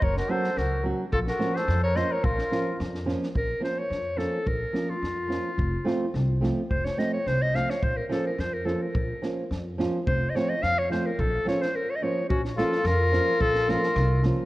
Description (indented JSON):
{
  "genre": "balkan folk, Balkan wedding band",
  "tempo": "108 BPM",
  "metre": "2/4",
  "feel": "straight",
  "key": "Bb harmonic minor",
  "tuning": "A4 = 440 Hz",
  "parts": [
    { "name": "clear clarinet", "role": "melody", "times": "0.0-14.2 s", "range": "F4 to F5", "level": "-27 LUFS", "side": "equal", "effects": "none" },
    { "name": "mellow trumpet", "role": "second line", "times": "0.0-2.8, 12.3-14.2 s", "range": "Db4 to C5", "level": "-32 LUFS", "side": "left 3 dB", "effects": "none" },
    { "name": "upright bass", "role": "bass", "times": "0.0-14.3 s", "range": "F1 to F2", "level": "-28 LUFS", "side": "equal", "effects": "none" },
    { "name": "compact cocktail drum kit", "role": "percussion", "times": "0.0-14.3 s", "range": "kick drum, snare drum", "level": "-32 LUFS", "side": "equal", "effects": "none" },
    { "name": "nylon-string guitar", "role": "accompaniment", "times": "0.3-14.4 s", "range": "F3 to Gb4", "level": "-30 LUFS", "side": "right 2 dB", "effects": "none" }
  ],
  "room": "moderate concert hall reverb, RT60 2.1 s",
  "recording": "worn, warbling old tape, cassette tape, warbly pitch drift",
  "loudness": "-24 LUFS",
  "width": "side -17 dB against mid",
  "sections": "0.0-3.4 A section; 3.4-12.3 B section; 12.3-14.5 C section",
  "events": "clarinet solo 3.4-12.3; break 11.7-12.3",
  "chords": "0.0 Gb; 1.1 Bbm; 5.6 F; 7.8 Bbm; 10.1 F; 11.2 Bbm",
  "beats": "| 0.02 0.57 | 1.13 1.68 | 2.24 2.79 | 3.35 3.91 | 4.47 5.03 | 5.59 6.15 | 6.71 7.27 | 7.83 8.39 | 8.95 9.51 | 10.07 10.62 | 11.18 11.74 | 12.30 12.85 | 13.40 13.96"
}